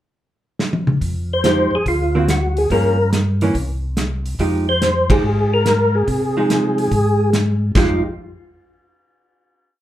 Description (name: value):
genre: soul jazz organ trio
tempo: 142 BPM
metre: 4/4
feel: swing 68% on 8ths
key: F minor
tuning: A4 = 440 Hz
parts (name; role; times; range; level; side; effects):
- warm soul drum kit; drums; 0.6-7.9 s; crash cymbal, hi-hat, kick drum, ride cymbal, snare drum, toms; -21 LUFS; equal; none
- mellow tonewheel organ; bass; 1.0-8.0 s; C2 to C3; -20 LUFS; equal; slow rotary speaker
- percussive tonewheel organ; melody; 1.3-8.0 s; E#4 to C5; -18 LUFS; left 1 dB; slow rotary speaker, chorus vibrato, plate reverb
- vintage hollow-body jazz guitar; accompaniment; 1.4-8.0 s; D3 to G4; -21 LUFS; right 2 dB; none
room: wet club reverb, RT60 0.7 s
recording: heard from further back in the room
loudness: -15 LUFS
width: side -12 dB against mid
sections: 0.0-1.0 pickup bar; 1.0-7.8 A section; 7.8-9.4 final chord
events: drum fill 0.6-1.0; band accent 5.0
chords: 0.0 N.C.; 1.0 Fm9; 1.9 D7alt; 2.7 Gm7b5; 3.5 N.C.; 4.4 Fm7; 7.8 Fm9